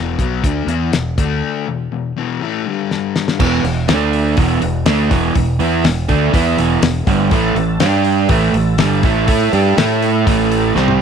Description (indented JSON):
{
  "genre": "classic rock",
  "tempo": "122 BPM",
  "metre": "4/4",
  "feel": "straight",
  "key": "unclear",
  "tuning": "A4 = 441 Hz",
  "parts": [
    { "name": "crunchy overdriven guitar", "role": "riff", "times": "0.0-11.0 s", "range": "E2 to A4", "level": "-19 LUFS", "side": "left 10 dB", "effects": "none" },
    { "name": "growling fingered electric bass", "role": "bass", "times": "0.0-11.0 s", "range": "E1 to A2", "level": "-19 LUFS", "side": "right 1 dB", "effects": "overdrive" },
    { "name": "damped 70s drum kit", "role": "drums", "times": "0.2-11.0 s", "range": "crash cymbal, hi-hat, kick drum, snare drum, toms", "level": "-18 LUFS", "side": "left 2 dB", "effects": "none" },
    { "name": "crunchy overdriven guitar", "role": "riff", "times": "3.4-11.0 s", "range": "E2 to A4", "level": "-16 LUFS", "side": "right 13 dB", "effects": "none" },
    { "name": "tonewheel organ", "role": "sustained chords", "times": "7.0-11.0 s", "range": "A3 to A5", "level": "-26 LUFS", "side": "right 1 dB", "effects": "slow rotary speaker, overdrive, chorus vibrato" }
  ],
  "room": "light reverb, small room ambience",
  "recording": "1960s-style stereo with parts hard left and right",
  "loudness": "-13 LUFS",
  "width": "side -7 dB against mid",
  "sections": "0.0-3.4 A section; 3.4-11.0 B section",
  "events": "break 1.4-3.4; drum fill 2.9-3.4, 10.8",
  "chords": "0.0 E5; 1.2 D5; 1.7 E5; 2.7 G5; 3.4 E5; 3.9 D5; 4.4 E5; 7.3 A5; 7.8 G5; 8.3 A5",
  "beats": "0.43 0.93 | 1.42 1.92 2.41 2.90 | 3.40 3.89 4.38 4.87 | 5.36 5.85 6.34 6.83 | 7.32 7.81 8.30 8.79 | 9.28 9.77 10.27 10.76"
}